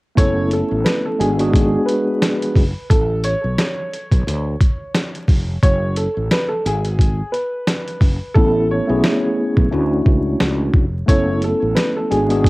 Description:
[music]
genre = hip hop, boom-bap hip-hop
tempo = 88 BPM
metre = 4/4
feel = swing 56% on 16ths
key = F# minor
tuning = A4 = 440 Hz
[part]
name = warm upright piano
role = melody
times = 0.2-12.5 s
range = G#4 to C#5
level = -23 LUFS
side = right 1 dB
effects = high-pass filter, low-pass filter
[part]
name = mellow tine electric piano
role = accompaniment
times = 0.2-2.6, 8.4-12.5 s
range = G#3 to A4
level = -18 LUFS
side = equal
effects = medium stereo tremolo, cassette tape, high-pass filter, low-pass filter
[part]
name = fretless electric bass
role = bass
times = 0.2-12.5 s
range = F1 to D2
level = -21 LUFS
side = equal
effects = wide subtle chorus
[part]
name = boom bap sampler-style drum kit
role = drums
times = 0.2-12.5 s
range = hi-hat, kick drum, snare drum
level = -16 LUFS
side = equal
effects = cassette tape
[sound]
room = little or no reverb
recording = home recording on cassette, vinyl crackle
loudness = -15 LUFS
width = side -22 dB against mid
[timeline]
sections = 0.2-12.5 A section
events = hi-hats muted 8.4-11.1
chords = 0.2 F#m7; 1.2 G#m7b5; 2.9 Aadd9; 4.3 Dmmaj7; 5.6 F#m; 6.7 F#sus4 (rootless); 8.4 Amaj9; 9.7 Dmaj7; 11.1 F#m7

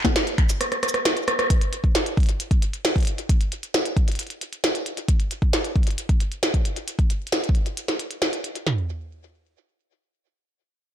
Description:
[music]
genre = IDM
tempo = 134 BPM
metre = 4/4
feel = straight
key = none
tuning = none
[part]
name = glitchy drum kit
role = drums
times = 0.0-8.8 s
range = kick drum, snare drum, toms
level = -20 LUFS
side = equal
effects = none
[part]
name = glitchy drum kit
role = drums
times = 0.0-8.6 s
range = cabasa, finger snaps, hi-hat, percussion blips, rim click, snare drum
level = -24 LUFS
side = equal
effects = soft clipping on snare, ping-pong delay
[sound]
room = light reverb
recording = blown-out, overdriven recording, overdrive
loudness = -21 LUFS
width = side -10 dB against mid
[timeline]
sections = 0.0-1.5 A section; 1.5-8.7 B section; 8.7-10.9 C section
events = drum fill 0.6-1.5; band accent 1.4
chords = none

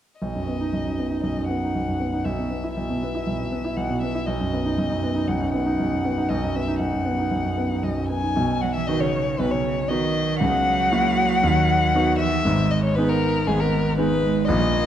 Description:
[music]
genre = quick classical-period movement for piano trio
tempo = 118 BPM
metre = 4/4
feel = straight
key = B major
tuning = A4 = 440 Hz
[part]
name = warm violin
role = melody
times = 0.2-14.9 s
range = G#4 to G#5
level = -26 LUFS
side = left 3 dB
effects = none
[part]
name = clear concert grand piano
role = accompaniment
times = 0.2-14.9 s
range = G#1 to G#4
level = -22 LUFS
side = right 1 dB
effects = none
[part]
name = rich cello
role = second line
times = 8.6-14.9 s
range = B2 to B3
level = -26 LUFS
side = right 7 dB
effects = none
[sound]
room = wet recital hall reverb, RT60 1.7 s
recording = dark, warm production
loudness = -20 LUFS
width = side -10 dB against mid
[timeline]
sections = 0.2-8.4 A section; 8.4-14.9 B section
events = none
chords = 0.2 B; 2.3 E5/B; 4.3 B; 10.4 F#7/C#; 11.4 B/D#; 12.5 G#m

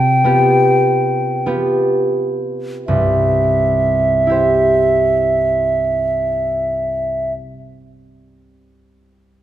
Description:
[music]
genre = classical, romantic duo for flute and harp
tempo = 41-54 BPM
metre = 3/4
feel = rubato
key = C major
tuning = A4 = 439 Hz
[part]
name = concert flute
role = melody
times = 0.0-7.3 s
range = E5 to G5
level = -15 LUFS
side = right 1 dB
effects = none
[part]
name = concert harp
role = accompaniment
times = 0.0-8.5 s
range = C2 to C5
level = -17 LUFS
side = right 1 dB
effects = none
[sound]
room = moderate recital hall reverb, RT60 1.3 s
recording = none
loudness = -13 LUFS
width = side -12 dB against mid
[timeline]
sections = 0.0-2.9 A section; 2.9-7.0 B section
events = slowing down 0.0-2.9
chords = 0.0 G7/C; 2.9 C

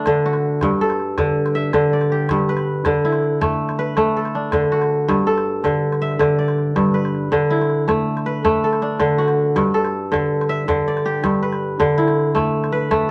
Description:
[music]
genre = west african traditional, West African string and xylophone music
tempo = 108 BPM (dotted quarters)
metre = 12/8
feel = straight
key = D major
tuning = A4 = 440 Hz
[part]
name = kora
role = arpeggios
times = 0.0-13.1 s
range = G2 to E5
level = -19 LUFS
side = equal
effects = none
[part]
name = calabash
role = percussion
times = 0.1-13.0 s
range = none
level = -32 LUFS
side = equal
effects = none
[sound]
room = moderate studio reverb, RT60 0.6 s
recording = none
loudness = -19 LUFS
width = mono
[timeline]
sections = 0.0-13.1 A section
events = none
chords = 0.0 D; 0.6 G; 2.9 D; 5.1 G; 7.3 D; 9.6 G; 11.8 D5

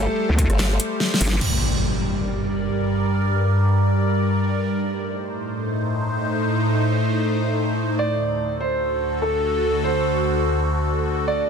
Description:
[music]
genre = heavy wobble dubstep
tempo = free time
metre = none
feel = none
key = G harmonic minor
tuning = A4 = 440 Hz
[part]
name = warm concert grand piano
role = melody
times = 0.0-1.3, 8.0-11.5 s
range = A3 to D5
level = -24 LUFS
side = right 1 dB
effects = tape echo
[part]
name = evolving wavetable pad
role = sustained chords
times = 0.0-11.5 s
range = D2 to D5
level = -21 LUFS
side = equal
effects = phaser, built-in reverb, sidechain pumping
[part]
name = formant-sweep wobble bass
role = bass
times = 0.0-0.8 s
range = G1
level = -21 LUFS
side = equal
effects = chorus, overdrive
[part]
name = vowel-sweep wobble bass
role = bass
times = 0.3-1.4 s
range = G1 to D2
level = -19 LUFS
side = equal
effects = chorus, overdrive
[part]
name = dubstep drum kit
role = drums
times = 0.4-1.5 s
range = crash cymbal, handclaps, hi-hat, rim click, snare drum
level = -24 LUFS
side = equal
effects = studio reverb
[part]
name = electronic kick drum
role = drums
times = 0.4-0.5 s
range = none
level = -24 LUFS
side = equal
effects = overdrive, studio reverb
[part]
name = impact and riser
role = sound effects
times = 1.4-3.1, 11.3-11.5 s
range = none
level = -25 LUFS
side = equal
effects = none
[sound]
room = light reverb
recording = dense, heavily limited modern master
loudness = -19 LUFS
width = side -6 dB against mid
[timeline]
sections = 0.0-1.4 A section; 1.4-11.5 B section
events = drop 0.0-1.4; drum fill 1.0-1.4; impact 1.4-3.1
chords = 0.0 G5; 1.4 Gm; 4.7 Adim; 8.0 D

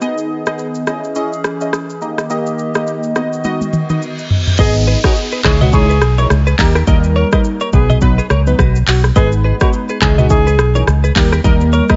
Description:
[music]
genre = afrobeats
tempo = 105 BPM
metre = 4/4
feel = swing 58% on 16ths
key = G# minor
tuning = A4 = 445 Hz
[part]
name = warm analog keys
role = accompaniment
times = 0.0-12.0 s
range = E3 to D#5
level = -21 LUFS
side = equal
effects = chorus, phaser
[part]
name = hollow soft pad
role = sustained chords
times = 0.0-4.6 s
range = D#3 to D#5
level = -26 LUFS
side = equal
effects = chorus
[part]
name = afro-pop drum kit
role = drums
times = 0.0-12.0 s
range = handclaps, hi-hat, kick drum, rim click, shaker, toms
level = -17 LUFS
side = equal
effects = none
[part]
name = reverse cymbal and downlifter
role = sound effects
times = 3.8-9.2 s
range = none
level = -29 LUFS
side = equal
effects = none
[part]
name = warm alto saxophone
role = melody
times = 4.6-11.9 s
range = F#4 to A#4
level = -23 LUFS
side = equal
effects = none
[part]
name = direct-recorded clean electric guitar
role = riff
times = 4.6-12.0 s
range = F#4 to D#5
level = -25 LUFS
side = equal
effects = analog chorus, digital delay
[part]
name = fingered electric bass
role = bass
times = 4.6-11.8 s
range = G#1 to D#2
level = -15 LUFS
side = equal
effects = none
[sound]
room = digital ambience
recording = nothing above 7.6 kHz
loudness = -14 LUFS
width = mono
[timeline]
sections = 0.0-4.6 A section; 4.6-12.0 B section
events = drum fill 3.4-4.6; reverse cymbal 3.8-4.6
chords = 0.0 G#m; 0.9 C#madd9; 2.0 D#; 3.2 B; 4.6 G#m; 5.4 C#madd9; 6.6 D#; 7.7 B; 9.2 G#m; 10.0 C#madd9; 11.2 D#

